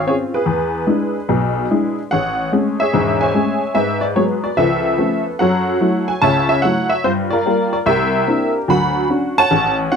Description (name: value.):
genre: solo jazz.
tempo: 146 BPM.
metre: 4/4.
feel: swing 66% on 8ths.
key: A major.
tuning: A4 = 436 Hz.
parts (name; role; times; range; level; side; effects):
honky-tonk upright piano; solo; 0.0-10.0 s; E1 to B5; -14 LUFS; left 1 dB; none.
room: moderate studio reverb, RT60 0.7 s.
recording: dark, warm production.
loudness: -14 LUFS.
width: side -6 dB against mid.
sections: 0.0-2.1 A section; 2.1-10.0 B section.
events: none.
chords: 0.5 E7; 2.1 Amaj7; 3.8 G#m7b5; 4.6 C#7alt; 5.4 F#m7; 7.0 Gm7; 7.9 C9; 8.7 Dmaj7.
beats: 0.05 | 0.46 0.87 1.28 1.70 | 2.11 2.52 2.93 3.34 | 3.75 4.16 4.57 4.99 | 5.40 5.81 6.22 6.63 | 7.04 7.45 7.86 8.27 | 8.68 9.09 9.50 9.91.